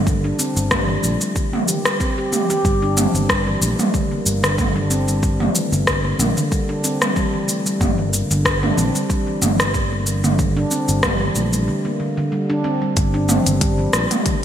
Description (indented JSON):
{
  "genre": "organic downtempo",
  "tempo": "93 BPM",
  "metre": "4/4",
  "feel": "swing 54% on 16ths",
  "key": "unclear",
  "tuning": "A4 = 440 Hz",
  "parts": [
    { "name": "handpan", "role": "arpeggios", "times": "0.0-14.4 s", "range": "D3 to G4", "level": "-21 LUFS", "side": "equal", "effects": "ping-pong delay" },
    { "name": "sustaining fretless electric bass", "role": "bass", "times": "0.0-14.1 s", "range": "G1 to Bb1", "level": "-21 LUFS", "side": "equal", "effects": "sidechain pumping" },
    { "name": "electronic kick drum", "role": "drums", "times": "0.1-14.4 s", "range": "none", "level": "-23 LUFS", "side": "equal", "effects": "none" },
    { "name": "organic electronic drum kit", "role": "drums", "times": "0.1-14.4 s", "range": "cabasa, hi-hat, rim click, toms", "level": "-20 LUFS", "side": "equal", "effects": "gated reverb" }
  ],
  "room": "moderate lush hall reverb, RT60 2.9 s",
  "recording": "bright 1980s-style digital production",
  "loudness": "-16 LUFS",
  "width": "side -10 dB against mid",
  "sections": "0.0-13.0 A section; 13.0-14.4 B section",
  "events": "break 11.7-13.0",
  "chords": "0.0 N.C.; 2.6 Csus2/G (rootless); 13.0 G5"
}